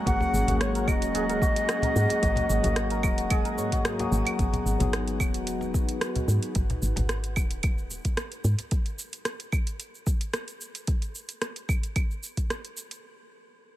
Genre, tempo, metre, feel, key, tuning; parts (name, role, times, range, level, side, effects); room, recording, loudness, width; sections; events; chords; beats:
organic downtempo; 111 BPM; 4/4; swing 53% on 16ths; G# minor; A4 = 440 Hz
mellow tine electric piano; accompaniment; 0.0-6.6 s; F#3 to G#4; -32 LUFS; left 3 dB; sidechain pumping, digital delay, shimmer reverb
warm analog pad; sustained chords; 0.0-8.7 s; G#3 to F#5; -35 LUFS; right 2 dB; chorus, sidechain pumping, shimmer reverb
santur; arpeggios; 0.0-7.4 s; F#4 to C#5; -34 LUFS; left 1 dB; digital delay, shimmer reverb
bright reedy bansuri; melody; 0.1-3.8 s; C#5 to F#5; -30 LUFS; equal; digital delay, shimmer reverb
woody FM bass; bass; 0.1-8.6 s; D#1 to G#2; -28 LUFS; equal; sidechain pumping
afro-pop drum kit; drums; 0.1-13.0 s; claves, hi-hat, rim click, shaker; -33 LUFS; right 2 dB; overdrive
electronic kick drum; drums; 0.1-12.5 s; -26 LUFS; equal; overdrive
cajon; percussion; 0.2-8.7 s; -32 LUFS; left 1 dB
light reverb, digital ambience; -24 LUFS; side -14 dB against mid
0.0-4.4 A section; 4.4-13.0 B section
kick drops out 3.8-4.4; filter sweep on analog synth pad 4.4-8.7
0.0 F#add9; 4.4 G#m7
| 0.07 0.60 1.15 1.69 | 2.23 2.77 3.31 3.85 | 4.39 4.93 5.47 6.01 | 6.55 7.09 7.63 8.17 | 8.71 9.25 9.79 10.34 | 10.88 11.42 11.96 12.50